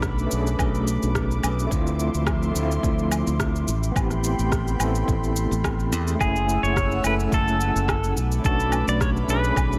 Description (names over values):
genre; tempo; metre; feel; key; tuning
sunset chillout; 107 BPM; 4/4; swing 54% on 16ths; unclear; A4 = 440 Hz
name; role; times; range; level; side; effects
overdriven tine electric piano; accompaniment; 0.0-9.8 s; A3 to A4; -30 LUFS; equal; medium tremolo, tape echo
airy breathy pad; sustained chords; 0.0-9.8 s; F3 to E6; -33 LUFS; equal; chorus
modern bright fingered electric bass; bass; 0.0-9.8 s; F#1 to E2; -27 LUFS; equal; tube saturation
electronic kick drum; drums; 0.0-9.7 s; none; -29 LUFS; equal; none
electronic rim click, shaker and woodblock; drums; 0.0-9.8 s; none; -33 LUFS; equal; none
pedal steel guitar; melody; 6.2-9.8 s; G#4 to D5; -28 LUFS; equal; digital delay
room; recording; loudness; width
light reverb, digital ambience; none; -23 LUFS; mono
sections
0.0-9.8 A section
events
none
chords
0.0 Bm9; 1.7 Dm9; 3.7 Am9; 6.2 F#m9; 8.2 Bm9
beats
0.03 0.59 1.15 | 1.71 2.27 2.83 3.40 | 3.96 4.52 5.08 5.64 | 6.20 6.76 7.32 7.88 | 8.44 9.00 9.56